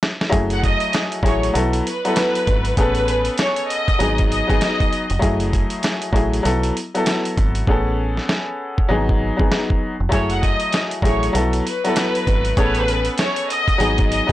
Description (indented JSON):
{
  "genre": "hip hop, boom-bap hip-hop",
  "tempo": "98 BPM",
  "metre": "4/4",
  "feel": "swing 60% on 16ths",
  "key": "F# dorian",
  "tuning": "A4 = 443 Hz",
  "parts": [
    { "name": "dusty soul sampler-style drum kit", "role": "drums", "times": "0.0-14.3 s", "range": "hi-hat, kick drum, snare drum", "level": "-21 LUFS", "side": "equal", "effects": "none" },
    { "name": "warm upright piano", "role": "accompaniment", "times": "0.3-14.3 s", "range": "F#3 to A4", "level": "-22 LUFS", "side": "left 2 dB", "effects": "high-pass filter, low-pass filter" },
    { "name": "deep dub fingered electric bass", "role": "bass", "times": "0.3-14.3 s", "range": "E#1 to B1", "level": "-22 LUFS", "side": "equal", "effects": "none" },
    { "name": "rich studio violin section", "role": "melody", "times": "0.5-5.2, 10.3-14.3 s", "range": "B4 to F#5", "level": "-22 LUFS", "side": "equal", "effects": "high-pass filter, low-pass filter, digital delay" },
    { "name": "bright saxophone section", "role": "stabs", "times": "10.1-13.0 s", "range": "C#4 to C#5", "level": "-29 LUFS", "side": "right 3 dB", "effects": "high-pass filter, low-pass filter, digital delay" }
  ],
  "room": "light reverb",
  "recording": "blown-out, overdriven recording, overdrive",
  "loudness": "-16 LUFS",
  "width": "side -15 dB against mid",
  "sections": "0.3-14.3 A section",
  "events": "drum fill 0.0-0.3; stop 0.0-0.3; hi-hats muted 7.7-10.1",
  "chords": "0.3 F#m9; 1.6 B7sus4; 2.8 Amaj9; 4.0 G#m7; 5.2 F#m9; 6.4 B7sus4; 7.7 Amaj9; 8.9 G#m7; 10.1 F#m9; 11.3 B7sus4; 12.6 Amaj9; 13.8 G#m7",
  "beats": "| 0.33 0.94 1.55 2.16 | 2.77 3.39 4.00 4.61 | 5.22 5.84 6.45 7.06 | 7.67 8.29 8.90 9.51 | 10.12 10.73 11.35 11.96 | 12.57 13.18 13.79"
}